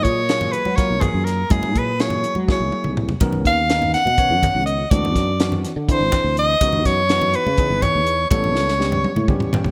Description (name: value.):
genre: electric jazz fusion.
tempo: 247 BPM (eighths).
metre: 7/8.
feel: straight.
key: unclear.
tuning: A4 = 442 Hz.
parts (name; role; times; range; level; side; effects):
breathy soprano saxophone; melody; 0.0-9.5 s; G#4 to F#5; -22 LUFS; equal; none.
overdriven tine electric piano; accompaniment; 0.0-9.7 s; D#3 to G5; -29 LUFS; equal; none.
sustaining fretless electric bass; bass; 0.0-9.7 s; G#1 to F#3; -25 LUFS; equal; ensemble chorus.
tight funk drum kit; drums; 0.0-9.7 s; hi-hat, kick drum, snare drum, toms; -24 LUFS; equal; gated reverb.
congas; percussion; 0.4-9.7 s; none; -30 LUFS; equal; none.
room: light reverb, small room ambience.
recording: bright 1980s-style digital production.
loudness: -19 LUFS.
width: mono.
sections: 0.0-9.7 A section.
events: drum fill 2.5-3.2, 8.6-9.7; tine electric piano fill 9.3-9.7.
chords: 0.0 F#maj9; 1.5 F#9; 3.2 Bmaj9; 4.9 D9; 6.6 C#m11; 8.3 A9.